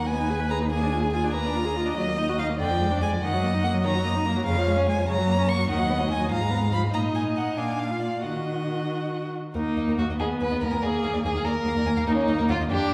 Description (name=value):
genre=quick classical-period movement for string quartet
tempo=96 BPM (dotted quarters)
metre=6/8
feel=straight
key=Eb minor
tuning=A4 = 440 Hz
part: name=warm violin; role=melody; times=0.0-12.9 s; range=F4 to Db6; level=-33 LUFS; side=equal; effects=none
part: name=clear violin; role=second line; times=0.0-12.9 s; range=Db4 to Gb5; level=-32 LUFS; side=equal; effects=none
part: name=rich viola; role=accompaniment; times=0.0-12.9 s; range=Db3 to Cb5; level=-30 LUFS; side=equal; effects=none
part: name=warm cello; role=bass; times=0.0-12.9 s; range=Eb2 to Eb3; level=-29 LUFS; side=equal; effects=none
room=wet scoring stage reverb, RT60 1.9 s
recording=heard from further back in the room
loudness=-25 LUFS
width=mono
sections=0.0-9.6 A section; 9.6-12.9 A section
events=none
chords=0.1 Abm/Eb; 0.7 Bb7/Eb; 2.0 Ebm; 2.6 Ddim/F; 3.2 Ebm/Gb; 4.5 Db/F; 5.1 Gb; 5.7 B/D#; 6.3 Fdim/Ab; 6.9 Eb5/Bb; 7.6 Bb; 8.2 Ebm; 9.6 Eb5; 10.2 Abm; 10.8 Bb7(no3)/Eb